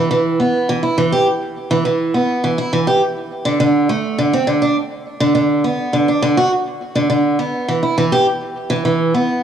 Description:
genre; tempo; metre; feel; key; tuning
folktronica; 103 BPM; 4/4; straight; E minor; A4 = 439 Hz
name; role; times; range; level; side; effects
picked steel-string acoustic guitar; solo; 0.0-9.4 s; D3 to G4; -14 LUFS; right 1 dB; cassette tape
room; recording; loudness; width
moderate lush hall reverb, RT60 2.4 s; home recording on cassette, studio ambience; -14 LUFS; side -8 dB against mid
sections
0.0-9.4 A section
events
none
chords
none

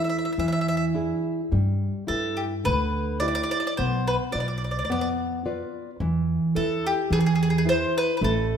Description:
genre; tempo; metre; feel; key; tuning
italian folk, Italian serenade; 108 BPM; 4/4; straight; unclear; A4 = 441 Hz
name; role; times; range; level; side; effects
bowl-back mandolin; melody; 0.0-8.6 s; G4 to E5; -26 LUFS; equal; none
nylon-string guitar; accompaniment; 0.0-8.6 s; D3 to D5; -26 LUFS; right 1 dB; none
upright bass; bass; 0.0-8.6 s; A1 to G2; -28 LUFS; equal; none
room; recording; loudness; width
wet recital hall reverb, RT60 1.5 s; minimal, uncompressed stereo recording; -22 LUFS; side -8 dB against mid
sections
0.0-8.6 A section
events
none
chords
0.4 E7; 1.5 G6; 3.8 Bdim; 6.0 Esus4; 7.1 E

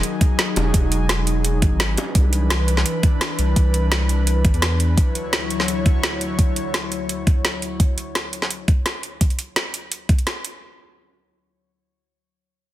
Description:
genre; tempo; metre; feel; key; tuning
liquid drum and bass; 170 BPM; 4/4; straight; unclear; A4 = 440 Hz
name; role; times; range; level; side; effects
airy breathy pad; sustained chords; 0.0-7.8 s; D2 to C#5; -25 LUFS; left 1 dB; chorus
garage drum kit; drums; 0.0-10.5 s; hi-hat, snare drum; -23 LUFS; right 1 dB; overdrive, studio ambience
electronic kick drum; drums; 0.2-10.2 s; none; -17 LUFS; equal; overdrive, studio ambience
saturated sub bass; bass; 0.6-5.0 s; E1 to E2; -19 LUFS; equal; none
bongos; percussion; 0.6-2.1 s; none; -27 LUFS; equal; none
room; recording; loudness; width
digital ambience; dense, heavily limited modern master; -18 LUFS; side -14 dB against mid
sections
0.0-10.6 A section; 10.6-12.7 B section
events
none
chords
0.0 Emaj9; 2.0 Cmaj9; 5.0 Dmaj9; 7.8 N.C.

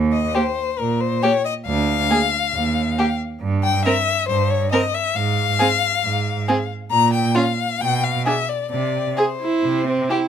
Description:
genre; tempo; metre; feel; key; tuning
quick classical-period movement for string quartet; 136 BPM; 4/4; straight; unclear; A4 = 439 Hz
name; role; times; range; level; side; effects
clear cello; bass; 0.0-10.0 s; D2 to C3; -22 LUFS; right 4 dB; none
warm violin; melody; 0.1-10.3 s; Bb4 to Bb5; -21 LUFS; left 8 dB; none
rich violin; second line; 0.3-10.2 s; F4 to Bb4; -22 LUFS; left 1 dB; none
clear viola; accompaniment; 0.4-10.3 s; Bb3 to G#4; -22 LUFS; right 4 dB; none
room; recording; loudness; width
little or no reverb; close, detailed microphones; -17 LUFS; side -8 dB against mid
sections
0.0-10.3 A section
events
none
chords
0.0 Eb5; 1.7 Bb/D (rootless); 2.5 N.C.; 3.4 C/G (rootless); 5.2 Fm/Ab; 6.9 Bb5; 7.8 Bdim; 8.7 C

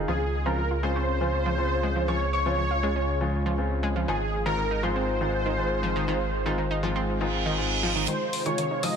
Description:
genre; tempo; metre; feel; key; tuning
progressive house; 120 BPM; 4/4; straight; unclear; A4 = 440 Hz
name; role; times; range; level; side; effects
lush unison pad; sustained chords; 0.0-9.0 s; C3 to F4; -35 LUFS; right 1 dB; chorus
warm grand piano; stabs; 0.0-9.0 s; Ab2 to F4; -31 LUFS; left 4 dB; low-pass filter, dub echo
saturated sub bass; bass; 0.0-8.1 s; Ab1 to Db2; -30 LUFS; equal; tube saturation
wide unison lead; melody; 0.1-9.0 s; Ab4 to Eb5; -30 LUFS; right 1 dB; ensemble chorus, tape echo
soft round pluck; second line; 0.1-9.0 s; Ab5 to Eb6; -36 LUFS; left 1 dB; lush chorus, dub echo
analog pluck; arpeggios; 0.1-8.9 s; Eb3 to F4; -32 LUFS; right 1 dB; chorus, dub echo
reverse cymbal; sound effects; 7.2-8.1 s; none; -30 LUFS; right 6 dB; none
electronic hi-hat; drums; 8.1-8.9 s; none; -32 LUFS; left 4 dB; overdrive, low-pass filter on hats, low-pass filter on room
room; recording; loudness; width
light reverb, digital ambience; none; -24 LUFS; side -7 dB against mid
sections
0.0-8.1 A section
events
filter sweep on synth pluck 0.0-8.1; filter sweep on analog synth pad 0.0-8.1; reverse cymbal 7.2-8.1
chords
0.1 Dbmaj7; 4.1 Ab6; 8.1 Fm7

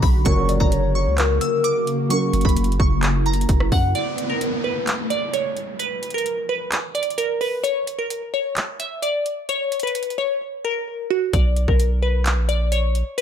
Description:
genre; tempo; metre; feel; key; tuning
hip hop, trap; 130 BPM; 4/4; half-time; unclear; A4 = 440 Hz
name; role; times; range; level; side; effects
glassy wavetable pluck; melody; 0.0-13.2 s; F#4 to E6; -24 LUFS; equal; chorus, analog delay
dark concert grand piano; accompaniment; 0.0-4.0 s; F#3 to D5; -28 LUFS; right 2 dB; lush chorus
ethereal airy pad; sustained chords; 0.0-3.9 s; C#3 to F#4; -26 LUFS; equal; ensemble chorus, built-in reverb
long sustained 808-style bass; bass; 0.0-3.9, 11.3-13.0 s; F#1 to F#2; -20 LUFS; equal; none
trap drum kit; drums; 0.0-13.2 s; handclaps, hi-hat, kick drum, rim click; -22 LUFS; equal; none
analog synth brass; stabs; 0.3-0.7 s; C#2 to F#3; -28 LUFS; right 2 dB; chorus, analog delay
gliding portamento lead; second line; 0.5-2.1 s; A#4 to D5; -23 LUFS; left 4 dB; chorus, analog delay
downlifter; sound effects; 4.0-7.6 s; none; -29 LUFS; equal; none
room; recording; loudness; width
light reverb; none; -19 LUFS; side -8 dB against mid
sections
0.0-4.0 A section; 4.0-13.2 B section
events
break 4.0-11.3; drums muted 10.4-11.3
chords
0.3 F#; 4.0 N.C.; 11.3 Bmmaj7

